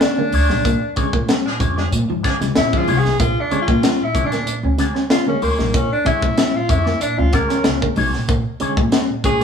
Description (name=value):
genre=funk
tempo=94 BPM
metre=4/4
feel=straight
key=Bb mixolydian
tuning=A4 = 435 Hz
part: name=warm tenor saxophone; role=melody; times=0.0-9.4 s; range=Bb3 to Bb4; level=-21 LUFS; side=left 1 dB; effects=analog delay
part: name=electric guitar with an envelope filter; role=accompaniment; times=0.0-9.4 s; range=D4 to D5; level=-27 LUFS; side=left 4 dB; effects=wah, spring reverb
part: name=tight funk drum kit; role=drums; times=0.0-9.4 s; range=hi-hat, kick drum, snare drum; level=-20 LUFS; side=left 1 dB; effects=none
part: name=electric guitar at the edge of break-up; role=riff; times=0.2-9.4 s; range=F3 to C#4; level=-26 LUFS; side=equal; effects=none
part: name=reed electric piano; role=stabs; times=0.2-9.4 s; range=Bb2 to C#4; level=-26 LUFS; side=right 3 dB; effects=fast tremolo
part: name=upright bass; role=bass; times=0.3-9.4 s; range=Bb1 to Bb2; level=-21 LUFS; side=left 1 dB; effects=none
part: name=warm horn section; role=second line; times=1.5-3.2 s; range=F3 to Ab4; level=-28 LUFS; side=left 1 dB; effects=none
room=wet studio reverb, RT60 0.7 s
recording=band playing live in one room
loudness=-15 LUFS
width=side -7 dB against mid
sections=0.0-9.4 A section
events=tenor saxophone solo 0.0-9.4; band accent 0.6-3.2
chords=0.0 Bb7#9